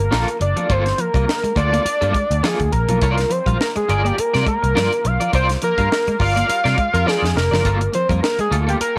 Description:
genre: funk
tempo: 104 BPM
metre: 4/4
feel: swing 56% on 16ths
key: unclear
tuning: A4 = 440 Hz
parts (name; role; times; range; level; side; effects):
- fat analog lead; melody; 0.0-8.9 s; G4 to F5; -22 LUFS; equal; chorus
- electric guitar at the edge of break-up; accompaniment; 0.0-9.0 s; Bb3 to F5; -27 LUFS; equal; tremolo
- vintage muted picked electric bass; bass; 0.0-8.8 s; F1 to C3; -22 LUFS; equal; none
- semi-hollow electric guitar; riff; 0.1-8.8 s; F3 to Bb3; -30 LUFS; equal; none
- tight funk drum kit; drums; 0.1-9.0 s; hi-hat, kick drum, snare drum; -26 LUFS; equal; none
- warm horn section; second line; 6.2-7.1 s; G3 to Bb4; -30 LUFS; equal; none
room: light reverb, small room ambience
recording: none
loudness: -18 LUFS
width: mono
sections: 0.0-9.0 A section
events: band accent 5.3-7.7; drum fill 7.1-7.7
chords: 0.0 Gm9; 3.0 C9sus4; 7.7 Gm9

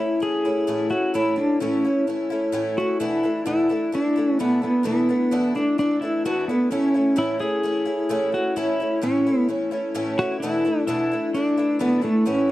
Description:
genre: rock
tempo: 129 BPM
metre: 4/4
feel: straight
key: A major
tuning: A4 = 440 Hz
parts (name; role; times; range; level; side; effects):
- pedal steel guitar; melody; 0.0-12.5 s; A3 to G#4; -21 LUFS; equal; slapback echo
- picked twelve-string acoustic guitar; accompaniment; 0.0-12.5 s; E2 to E4; -24 LUFS; left 1 dB; none
room: studio reverb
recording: dry, close 1970s-style studio recording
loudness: -20 LUFS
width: side -16 dB against mid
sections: 0.0-12.5 A section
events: none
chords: 0.0 A; 3.0 E7sus4; 6.7 A; 10.4 E7sus4

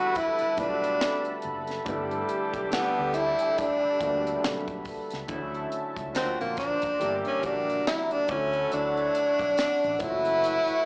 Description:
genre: R&B, neo-soul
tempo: 70 BPM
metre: 4/4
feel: swing 58% on 16ths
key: D major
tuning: A4 = 439 Hz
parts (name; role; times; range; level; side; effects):
- breathy tenor saxophone; melody; 0.0-10.9 s; A#3 to F#4; -25 LUFS; equal; slapback echo
- warm grand piano; accompaniment; 0.0-10.9 s; D3 to C#5; -35 LUFS; equal; slapback echo
- chorused pulse-width pad; sustained chords; 0.0-10.9 s; C#4 to C#6; -35 LUFS; equal; none
- bright saxophone section; stabs; 0.0-10.9 s; C3 to B4; -35 LUFS; equal; slapback echo
- tight funk drum kit; drums; 0.2-10.8 s; hi-hat, kick drum, snare drum; -33 LUFS; equal; none
- fretless electric bass; bass; 0.4-10.7 s; F#1 to D2; -41 LUFS; equal; none
room: light reverb, small room ambience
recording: live gig heard through the venue's PA, club reverb, small speaker sound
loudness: -24 LUFS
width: side -37 dB against mid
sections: 0.0-5.3 A section; 5.3-10.9 B section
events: tenor saxophone solo 5.3-10.9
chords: 0.0 A9sus4; 1.9 G69; 5.3 Dmaj9; 6.1 D7alt; 7.0 Gm6; 8.3 Dmaj9; 10.0 F#m7

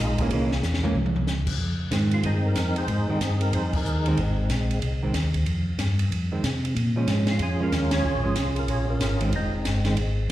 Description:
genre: soul jazz organ trio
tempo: 186 BPM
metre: 4/4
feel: swing 62% on 8ths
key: F minor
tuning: A4 = 439 Hz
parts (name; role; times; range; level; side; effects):
- percussive tonewheel organ; melody; 0.0-4.8, 7.3-10.0 s; Ab3 to Db5; -28 LUFS; equal; slow rotary speaker, chorus vibrato, slapback echo
- mellow tonewheel organ; bass; 0.0-10.3 s; F1 to C3; -24 LUFS; equal; chorus vibrato, slow rotary speaker
- hollow-body jazz guitar; accompaniment; 0.2-10.0 s; Eb3 to Db4; -29 LUFS; right 3 dB; slapback echo
- open jazz drum kit; drums; 0.2-10.3 s; crash cymbal, hi-hat, kick drum, ride cymbal, snare drum, toms; -30 LUFS; equal; none
room: little or no reverb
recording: live gig heard through the venue's PA, recital hall reverb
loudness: -22 LUFS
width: side -14 dB against mid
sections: 0.0-1.6 A section; 1.6-10.3 B section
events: tonewheel organ solo 0.0-1.6; drum fill 0.6-1.3; band accent 3.7, 7.9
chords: 0.3 C7b9; 1.6 Fm7; 6.8 Bbm7; 9.3 Fm7

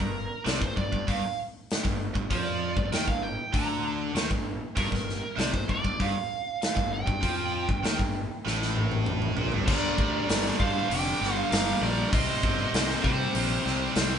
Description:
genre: hard rock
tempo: 98 BPM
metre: 4/4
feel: straight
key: G minor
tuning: A4 = 441 Hz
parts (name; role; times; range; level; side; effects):
- lead guitar through a small cranked amp; melody; 0.0-13.9 s; Bb4 to Bb5; -32 LUFS; right 3 dB; overdrive
- biting overdriven guitar; riff; 0.0-14.2 s; G2 to C4; -34 LUFS; left 7 dB; none
- scooped high-gain guitar; riff; 0.0-14.2 s; G2 to C4; -32 LUFS; right 6 dB; distortion
- fuzz fingered electric bass; bass; 0.0-14.2 s; F1 to C3; -33 LUFS; left 1 dB; overdrive
- big rock drum kit; drums; 0.0-14.1 s; crash cymbal, hi-hat, kick drum, snare drum, toms; -29 LUFS; equal; none
- octave-fuzz lead guitar; second line; 9.7-13.9 s; G4 to D5; -36 LUFS; right 2 dB; distortion
room: moderate studio reverb, RT60 0.8 s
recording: band playing live in one room, nothing above 10.7 kHz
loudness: -25 LUFS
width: side -8 dB against mid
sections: 0.0-9.7 A section; 9.7-14.2 B section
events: drum fill 8.5-9.7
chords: 0.0 G5; 9.7 Gm; 12.1 Cm

